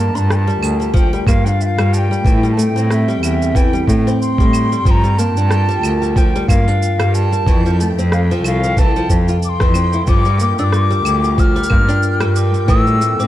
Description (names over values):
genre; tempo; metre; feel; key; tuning
folktronica; 92 BPM; 4/4; swing 56% on 16ths; G dorian; A4 = 439 Hz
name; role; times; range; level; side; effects
bright wooden flute; melody; 0.0-13.3 s; E5 to F6; -21 LUFS; left 1 dB; tape echo
warbly tape-like pad; sustained chords; 0.0-13.3 s; G3 to F5; -24 LUFS; equal; chorus, built-in reverb, vintage 12-bit sampler grit
nylon-string guitar; arpeggios; 0.0-13.3 s; E3 to F4; -22 LUFS; left 1 dB; none
rich cello; bass; 0.0-13.3 s; C2 to A2; -16 LUFS; equal; tube saturation
backwards swelling texture; texture; 0.8-13.3 s; G5; -33 LUFS; right 1 dB; built-in reverb
electronic cabasa, rim click and claves; drums; 0.2-13.3 s; none; -26 LUFS; right 1 dB; none
electronic kick drum; drums; 0.9-12.8 s; none; -14 LUFS; equal; overdrive
glockenspiel with soft plastic mallets; second line; 10.3-13.3 s; G5 to D6; -28 LUFS; right 1 dB; ping-pong delay
room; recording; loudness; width
studio reverb; dark, warm production; -12 LUFS; side -13 dB against mid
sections
0.0-13.3 A section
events
none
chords
0.0 Gm7; 2.2 Am7; 4.9 Gm7; 7.5 Fmaj7; 10.1 Gm7; 12.7 Am7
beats
0.29 0.94 1.60 | 2.25 2.90 3.55 4.21 | 4.86 5.51 6.16 6.82 | 7.47 8.12 8.77 9.42 | 10.07 10.73 11.38 12.03 | 12.68